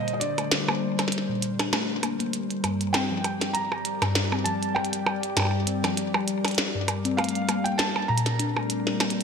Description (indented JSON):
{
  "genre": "IDM",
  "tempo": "99 BPM",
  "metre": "4/4",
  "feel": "swing 56% on 16ths",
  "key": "G minor",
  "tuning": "A4 = 440 Hz",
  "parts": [
    { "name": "felt-muted upright piano", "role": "melody", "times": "0.0-9.2 s", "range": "D5 to Bb5", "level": "-31 LUFS", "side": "right 2 dB", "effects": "vintage 12-bit sampler grit, digital delay" },
    { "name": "glassy FM pad", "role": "sustained chords", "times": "0.0-9.2 s", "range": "D3 to D5", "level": "-30 LUFS", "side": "left 2 dB", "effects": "ensemble chorus, built-in reverb" },
    { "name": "harp-like synth pluck", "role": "arpeggios", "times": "0.0-9.1 s", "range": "G2 to D4", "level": "-30 LUFS", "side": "left 2 dB", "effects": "chorus, digital delay" },
    { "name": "glitchy drum kit", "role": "drums", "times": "0.1-9.2 s", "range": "hi-hat, percussion blips, snare drum", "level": "-27 LUFS", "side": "right 2 dB", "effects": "gated reverb, ping-pong delay" }
  ],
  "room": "moderate lush hall reverb, RT60 2.0 s",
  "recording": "bright 1980s-style digital production",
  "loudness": "-23 LUFS",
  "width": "side -6 dB against mid",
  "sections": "0.0-9.2 A section",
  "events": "filter sweep on ambient pad 0.0-9.2",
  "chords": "0.0 Bbadd9; 2.3 Gm; 7.2 Bbadd9",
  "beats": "0.52 1.12 1.73 | 2.33 2.94 3.55 4.15 | 4.76 5.37 5.97 6.58 | 7.18 7.79 8.40 9.00"
}